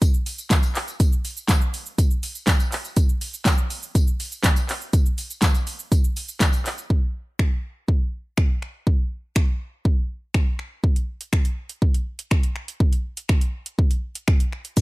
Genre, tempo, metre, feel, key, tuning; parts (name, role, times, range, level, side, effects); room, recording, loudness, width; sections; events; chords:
pop; 122 BPM; 4/4; straight
pop drum kit; drums; 0.0-14.8 s; crash cymbal, finger snaps, handclaps, hi-hat, kick drum, shaker, snare drum; -19 LUFS; equal
tambourine; percussion; 0.0-6.9, 14.8 s; -36 LUFS; left 4 dB
little or no reverb; -20 LUFS; side -21 dB against mid
0.0-6.9 A section; 6.9-14.8 B section